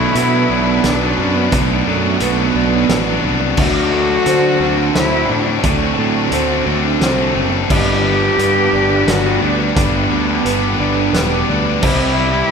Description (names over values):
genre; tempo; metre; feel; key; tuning
post-rock; 87 BPM; 3/4; straight; G major; A4 = 440 Hz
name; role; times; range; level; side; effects
dark cello; melody; 0.0-12.5 s; A3 to G4; -20 LUFS; left 1 dB; none
electric guitar through a small old amp; arpeggios; 0.0-12.5 s; B2 to F#4; -23 LUFS; left 1 dB; none
felt-muted upright piano; arpeggios; 0.0-12.5 s; B4 to D5; -26 LUFS; right 3 dB; none
distorted electric guitar; riff; 0.0-12.5 s; G2 to G4; -20 LUFS; right 8 dB; distortion
tight distorted guitar; riff; 0.0-12.5 s; G2 to E4; -20 LUFS; left 7 dB; distortion
fuzz fingered electric bass; bass; 0.0-12.4 s; E1 to D3; -20 LUFS; equal; overdrive
loose indie drum kit; drums; 0.2-12.0 s; crash cymbal, hi-hat, kick drum, snare drum; -20 LUFS; equal; none
room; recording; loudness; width
wet concert hall reverb, RT60 1.8 s; recorded in a church or concert hall; -13 LUFS; side -6 dB against mid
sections
0.0-12.5 A section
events
none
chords
0.0 Bm7; 3.6 D7; 7.7 G; 11.8 C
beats
0.15 0.84 | 1.52 2.21 2.90 | 3.58 4.27 4.95 | 5.64 6.33 7.01 | 7.70 8.39 9.08 | 9.76 10.45 11.14 | 11.83